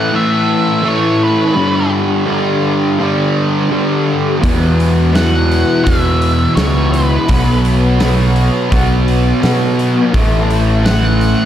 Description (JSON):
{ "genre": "rock, shoegaze and dream pop", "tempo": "84 BPM", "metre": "4/4", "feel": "straight", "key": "unclear", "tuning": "A4 = 440 Hz", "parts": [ { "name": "octave-fuzz lead guitar", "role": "melody", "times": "0.0-11.5 s", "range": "B4 to F#5", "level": "-20 LUFS", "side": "equal", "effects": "distortion, tape echo" }, { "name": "fuzz guitar", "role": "riff", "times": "0.0-11.5 s", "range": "E2 to B3", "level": "-13 LUFS", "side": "equal", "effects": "distortion, lush chorus" }, { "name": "growling fingered electric bass", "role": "bass", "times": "4.4-11.3 s", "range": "A1 to B2", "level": "-14 LUFS", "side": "equal", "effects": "overdrive" }, { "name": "big rock drum kit", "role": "drums", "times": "4.4-11.4 s", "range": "hi-hat, kick drum, snare drum", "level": "-19 LUFS", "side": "equal", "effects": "none" } ], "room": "moderate lush hall reverb, RT60 2.3 s", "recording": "dreamy mix soaked in reverb", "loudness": "-11 LUFS", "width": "side -10 dB against mid", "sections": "0.0-11.5 A section", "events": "none", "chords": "0.0 A5; 1.6 G5; 4.4 Esus2; 7.3 B5; 10.1 A5", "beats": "0.14 0.85 | 1.57 2.28 3.00 3.71 | 4.42 5.14 5.85 6.56 | 7.28 7.99 8.70 9.41 | 10.13 10.84" }